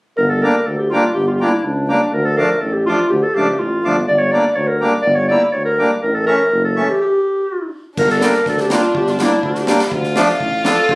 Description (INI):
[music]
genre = klezmer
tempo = 123 BPM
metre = 2/4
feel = straight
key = G dorian sharp4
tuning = A4 = 440 Hz
[part]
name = mellow clarinet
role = melody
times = 0.2-11.0 s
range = D4 to D5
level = -16 LUFS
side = equal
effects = none
[part]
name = warm tuba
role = bass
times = 0.2-11.0 s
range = F#1 to D2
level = -21 LUFS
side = equal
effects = none
[part]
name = accordion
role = accompaniment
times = 0.4-10.8 s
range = E3 to E4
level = -17 LUFS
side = equal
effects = none
[part]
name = warm violin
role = second line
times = 8.0-11.0 s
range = D4 to F4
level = -20 LUFS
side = equal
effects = tape echo
[part]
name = deep reggae drum kit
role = drums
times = 8.0-11.0 s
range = crash cymbal, kick drum, snare drum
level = -22 LUFS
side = equal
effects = none
[sound]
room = moderate small room reverb, RT60 0.5 s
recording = recorded on a phone in the room, studio reverb, compression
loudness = -13 LUFS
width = side -25 dB against mid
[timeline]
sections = 0.2-8.0 A section; 8.0-11.0 A section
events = stop 7.0-8.0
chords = 0.2 Gm; 2.1 Dm; 4.1 Gm; 6.0 A; 7.0 N.C.; 8.0 Gm; 9.9 Dm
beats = | 0.19 0.67 | 1.16 1.65 | 2.13 2.62 | 3.11 3.59 | 4.08 4.57 | 5.05 5.54 | 6.03 6.51 | 7.00 7.49 | 7.97 8.46 | 8.95 9.43 | 9.92 10.40 | 10.89